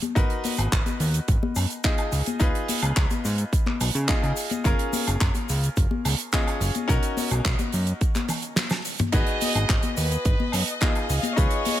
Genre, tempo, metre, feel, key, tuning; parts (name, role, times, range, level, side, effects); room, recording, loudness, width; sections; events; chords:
nu-disco, nu disco; 107 BPM; 4/4; straight; G# dorian; A4 = 440 Hz
damped 70s drum kit; drums; 0.0-11.8 s; crash cymbal, handclaps, hi-hat, shaker, snare drum, toms, woodblock; -28 LUFS; right 2 dB
congas; percussion; 0.0-11.8 s; -32 LUFS; left 6 dB
bright grand piano; accompaniment; 0.2-11.8 s; C#4 to D#5; -30 LUFS; left 1 dB; sidechain pumping, tape echo
fat analog bass; bass; 0.2-11.5 s; F#1 to C#3; -24 LUFS; equal
electronic kick drum; drums; 0.2-11.5 s; -23 LUFS; equal
rich chamber violin section; melody; 9.1-11.8 s; B4 to E#5; -30 LUFS; equal; vintage 12-bit sampler grit, ping-pong delay
clear symphonic string section; sustained chords; 9.1-11.8 s; D#5; -34 LUFS; left 4 dB; sidechain pumping
small room ambience; -21 LUFS; side -12 dB against mid
0.0-11.8 A section
drum fill 8.3-9.1
0.2 G#m7; 2.1 C#7; 4.6 F#maj7; 6.9 Bmaj7; 9.1 G#m7; 11.1 C#7